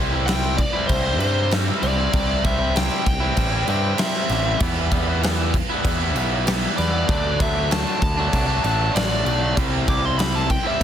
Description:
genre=quiet-loud alternative rock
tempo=97 BPM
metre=4/4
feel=straight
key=unclear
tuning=A4 = 440 Hz
part: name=biting overdriven guitar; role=riff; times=0.0-10.8 s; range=C3 to E4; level=-24 LUFS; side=equal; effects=none
part: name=growling picked electric bass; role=bass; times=0.0-10.8 s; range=A1 to G2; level=-24 LUFS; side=equal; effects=overdrive
part: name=biting lead guitar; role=melody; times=0.3-10.8 s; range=C5 to D6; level=-25 LUFS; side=left 2 dB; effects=overdrive, analog delay
part: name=big rock drum kit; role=drums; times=0.3-10.8 s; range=crash cymbal, kick drum, snare drum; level=-23 LUFS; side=equal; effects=none
room=little or no reverb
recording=dense, heavily limited modern master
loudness=-18 LUFS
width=side -9 dB against mid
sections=0.0-10.8 A section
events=lead electric guitar solo 0.0-10.8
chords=0.0 C; 4.6 Em; 7.1 D; 9.6 C

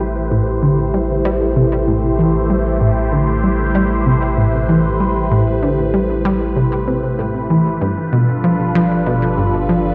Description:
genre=ambient, sequencer-driven space music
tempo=96 BPM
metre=4/4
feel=straight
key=A minor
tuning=A4 = 440 Hz
part: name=phased analog pad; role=sustained chords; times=0.0-9.9 s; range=G3 to C5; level=-21 LUFS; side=equal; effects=phaser, chorus
part: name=analog pluck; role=riff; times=0.0-9.8 s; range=G2 to G3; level=-19 LUFS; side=equal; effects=chorus, tape echo
part: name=round analog bass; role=bass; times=0.0-9.9 s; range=G1 to A1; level=-25 LUFS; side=equal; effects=none
room=wet concert hall reverb, RT60 2.1 s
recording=dark, warm production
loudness=-16 LUFS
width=mono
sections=0.0-9.9 A section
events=filter sweep on synth arpeggio sound 0.0-9.9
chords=0.0 Am7; 7.8 G7

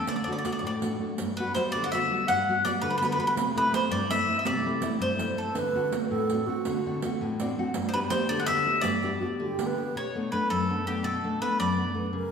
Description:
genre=italian folk, Italian serenade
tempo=110 BPM (dotted quarters)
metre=6/8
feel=straight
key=G major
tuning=A4 = 438 Hz
part: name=bowl-back mandolin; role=melody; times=0.0-5.5, 7.9-12.0 s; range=G4 to F#5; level=-27 LUFS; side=equal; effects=none
part: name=nylon-string guitar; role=accompaniment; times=0.0-12.3 s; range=F#2 to F#5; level=-30 LUFS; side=left 2 dB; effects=none
part: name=riq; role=percussion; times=0.1-9.8 s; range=none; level=-33 LUFS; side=right 7 dB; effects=none
part: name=wooden-headed alto flute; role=second line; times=5.5-7.2, 9.2-9.9, 12.0-12.3 s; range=F#4 to B4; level=-31 LUFS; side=right 4 dB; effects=none
room=wet concert hall reverb, RT60 1.7 s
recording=recorded in a church or concert hall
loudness=-25 LUFS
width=side -6 dB against mid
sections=0.0-1.2 A section; 1.2-9.9 B section; 9.9-12.3 C section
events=nylon-string guitar fill 7.2-7.7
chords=0.1 D; 1.2 Gmaj7; 3.4 C6; 5.5 D7; 7.7 G; 9.9 Bm7

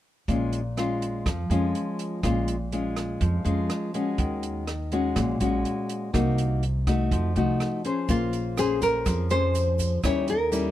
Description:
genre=bossa nova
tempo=123 BPM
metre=4/4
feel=straight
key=Bb minor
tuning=A4 = 440 Hz
part: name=nylon-string guitar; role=accompaniment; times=0.3-10.7 s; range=Bb2 to C5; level=-26 LUFS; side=left 2 dB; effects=none
part: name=upright bass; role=bass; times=0.3-10.7 s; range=Bb1 to F2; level=-28 LUFS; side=right 1 dB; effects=none
part: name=compact cocktail drum kit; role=drums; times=0.3-10.6 s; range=hi-hat, kick drum, rim click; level=-31 LUFS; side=right 1 dB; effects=none
part: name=nylon-string guitar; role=melody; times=8.1-10.7 s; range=F4 to Db5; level=-25 LUFS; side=left 1 dB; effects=none
part: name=tube shaker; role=percussion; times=8.1-10.7 s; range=none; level=-41 LUFS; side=right 7 dB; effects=none
room=little or no reverb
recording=none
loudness=-23 LUFS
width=side -13 dB against mid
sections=0.3-8.1 A section; 8.1-10.7 B section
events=none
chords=0.3 Bbm7; 4.2 Ebm7; 6.1 Cm7b5; 7.1 F7b9; 8.1 Bbm9; 10.0 Eb7b9

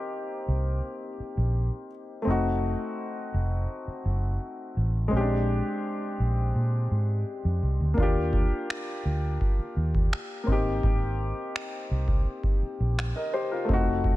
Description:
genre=contemporary R&B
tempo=84 BPM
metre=4/4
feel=straight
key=unclear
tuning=A4 = 444 Hz
part: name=warm baby grand piano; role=accompaniment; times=0.0-14.2 s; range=Ab3 to Eb5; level=-30 LUFS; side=left 2 dB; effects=none
part: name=vintage muted fingered electric bass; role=bass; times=0.5-14.2 s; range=F1 to Bb2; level=-26 LUFS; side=equal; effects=none
part: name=booming analog drum machine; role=drums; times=8.0-14.2 s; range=finger snaps, kick drum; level=-27 LUFS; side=equal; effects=none
room=digital ambience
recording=none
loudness=-25 LUFS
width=side -16 dB against mid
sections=0.0-14.2 A section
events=none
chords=0.0 Abmaj9 (rootless); 2.3 F7b9; 5.1 Bb13; 8.0 Ebmaj9; 10.5 Abmaj9

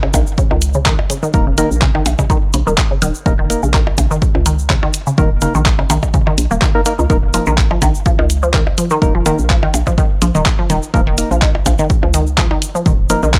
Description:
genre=minimal techno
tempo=125 BPM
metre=4/4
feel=swing 54% on 16ths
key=unclear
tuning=A4 = 440 Hz
part: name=resonant blip pluck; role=riff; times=0.0-13.3 s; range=Db3 to Bb3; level=-21 LUFS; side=equal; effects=phaser, sidechain pumping, tape echo
part: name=hollow knocking FM bass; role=bass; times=0.0-13.4 s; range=Eb1 to Db2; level=-20 LUFS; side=equal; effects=sidechain pumping
part: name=percussion blips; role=percussion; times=0.0-12.6 s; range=none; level=-27 LUFS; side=equal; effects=small room ambience, tape echo
part: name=electronic kick drum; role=drums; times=0.1-13.4 s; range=none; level=-18 LUFS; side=equal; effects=small room ambience
part: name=garage drum kit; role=drums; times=0.1-13.4 s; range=handclaps, hi-hat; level=-20 LUFS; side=equal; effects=overdrive, small room ambience
part: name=egg shaker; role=percussion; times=0.1-13.4 s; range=none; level=-29 LUFS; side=equal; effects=none
part: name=percussive organ stab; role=stabs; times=1.3-13.2 s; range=Bb3 to Bb4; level=-22 LUFS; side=equal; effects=chorus, tape echo
room=little or no reverb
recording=dry, gritty hardware recording, cassette tape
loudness=-14 LUFS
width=mono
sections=0.0-13.4 A section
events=none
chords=0.0 Eb5

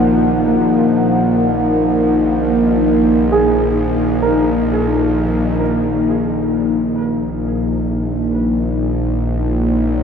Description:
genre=dark ambient drone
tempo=free time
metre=none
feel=none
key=unclear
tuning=A4 = 440 Hz
part: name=deep dark ambient pad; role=sustained chords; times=0.0-10.0 s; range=Bb3 to Gb5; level=-15 LUFS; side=left 1 dB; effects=chorus, built-in reverb
part: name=dark grand piano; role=arpeggios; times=0.0-5.9 s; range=Bb3 to Bb4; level=-22 LUFS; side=right 3 dB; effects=wide subtle chorus, tape echo
part: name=bowed-like drone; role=drone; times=0.0-10.0 s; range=Bb1 to F3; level=-20 LUFS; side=right 1 dB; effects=built-in reverb
room=wet huge ambient reverb, RT60 7.7 s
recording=dreamy mix soaked in reverb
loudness=-13 LUFS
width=side -7 dB against mid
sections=0.0-5.6 A section; 5.6-10.0 B section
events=none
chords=0.0 Ebm/Bb; 5.6 Bbm7

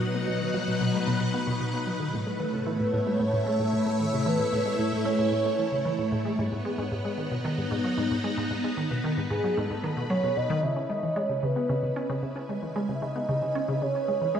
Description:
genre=ambient, sequencer-driven space music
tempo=113 BPM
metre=4/4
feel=straight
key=unclear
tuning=A4 = 439 Hz
part: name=phased string machine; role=sustained chords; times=0.0-14.4 s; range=A2 to G#5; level=-29 LUFS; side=left 1 dB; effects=ensemble chorus, phaser, shimmer reverb
part: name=resonant blip pluck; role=riff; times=0.0-14.4 s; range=G#2 to C#4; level=-29 LUFS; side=equal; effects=chorus, tape echo
part: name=soft octave-layered synth lead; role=melody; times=2.7-6.1, 9.3-14.4 s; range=G#4 to E5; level=-30 LUFS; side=right 1 dB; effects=chorus, tremolo, shimmer reverb, tape echo
part: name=twinkling granular texture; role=texture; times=11.3-14.4 s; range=E4 to D#6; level=-54 LUFS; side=left 1 dB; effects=none
room=wet plate reverb, RT60 2.9 s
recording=dreamy mix soaked in reverb, small room ambience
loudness=-25 LUFS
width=side -8 dB against mid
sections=0.0-10.6 A section; 10.6-14.4 B section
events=filter sweep on synth arpeggio sound 0.0-10.6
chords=0.0 B; 2.1 A; 6.4 G#m; 10.6 C#m

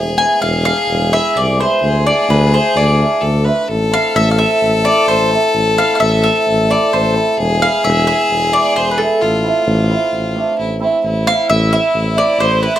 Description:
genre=klezmer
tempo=130 BPM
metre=4/4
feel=straight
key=A harmonic minor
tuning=A4 = 438 Hz
part: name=bright violin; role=second line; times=0.0-12.8 s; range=E4 to B4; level=-17 LUFS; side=left 3 dB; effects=none
part: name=warm tuba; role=bass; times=0.0-12.7 s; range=E1 to D2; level=-17 LUFS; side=equal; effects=none
part: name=mandolin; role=melody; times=0.2-12.8 s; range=A4 to G#5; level=-16 LUFS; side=equal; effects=none
part: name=cimbalom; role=accompaniment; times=0.2-12.7 s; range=G#3 to G#4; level=-19 LUFS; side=right 4 dB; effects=none
room=light reverb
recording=none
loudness=-11 LUFS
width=side -11 dB against mid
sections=0.0-11.0 A section; 11.0-12.8 A section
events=speeding up 0.0-12.8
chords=0.0 E; 1.8 Dm; 3.7 Am; 7.4 E; 9.2 Am

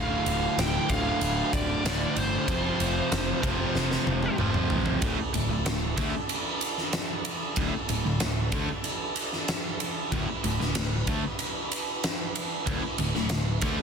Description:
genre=hard rock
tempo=94 BPM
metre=4/4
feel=straight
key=D dorian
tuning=A4 = 440 Hz
part: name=bluesy overdriven lead guitar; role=melody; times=0.0-4.4 s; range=C5 to G5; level=-32 LUFS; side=equal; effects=distortion, slapback echo
part: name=tonewheel organ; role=sustained chords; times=0.0-13.8 s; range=D4 to G5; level=-40 LUFS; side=equal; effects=slow rotary speaker
part: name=crunchy overdriven guitar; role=riff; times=0.0-13.8 s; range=D2 to A3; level=-33 LUFS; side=right 10 dB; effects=none
part: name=distorted electric guitar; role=riff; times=0.0-13.8 s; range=D2 to F4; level=-35 LUFS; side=equal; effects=distortion
part: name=sludgy distorted guitar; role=riff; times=0.0-13.8 s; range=D2 to A3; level=-34 LUFS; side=left 10 dB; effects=overdrive
part: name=picked electric bass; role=bass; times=0.0-13.8 s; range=D1 to D2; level=-32 LUFS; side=equal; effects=none
part: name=huge arena drum kit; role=drums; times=0.3-13.8 s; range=kick drum, ride cymbal, snare drum, toms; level=-29 LUFS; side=right 1 dB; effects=none
room=light reverb, small room ambience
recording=dense, heavily limited modern master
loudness=-25 LUFS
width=side -6 dB against mid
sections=0.0-5.0 A section; 5.0-13.8 B section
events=drum fill 3.8-5.0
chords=0.0 Dm; 2.5 F; 5.0 D5

